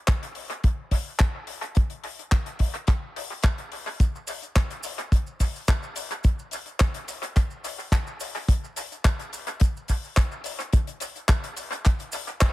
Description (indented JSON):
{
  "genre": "nu-disco",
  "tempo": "107 BPM",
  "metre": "4/4",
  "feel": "swing 53% on 16ths",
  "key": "none",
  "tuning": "none",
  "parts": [
    { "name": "damped 70s drum kit", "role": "drums", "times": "0.1-12.5 s", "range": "handclaps, hi-hat", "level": "-30 LUFS", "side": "left 1 dB", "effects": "studio reverb, dub echo" },
    { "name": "kick drum", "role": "drums", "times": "0.1-12.5 s", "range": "none", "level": "-20 LUFS", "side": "equal", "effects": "studio reverb" },
    { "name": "maracas", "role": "percussion", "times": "4.0-12.5 s", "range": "none", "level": "-39 LUFS", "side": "right 5 dB", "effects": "none" }
  ],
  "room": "little or no reverb",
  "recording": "echo-heavy mix",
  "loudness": "-24 LUFS",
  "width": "side -18 dB against mid",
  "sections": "0.0-12.5 A section",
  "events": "none",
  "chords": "none"
}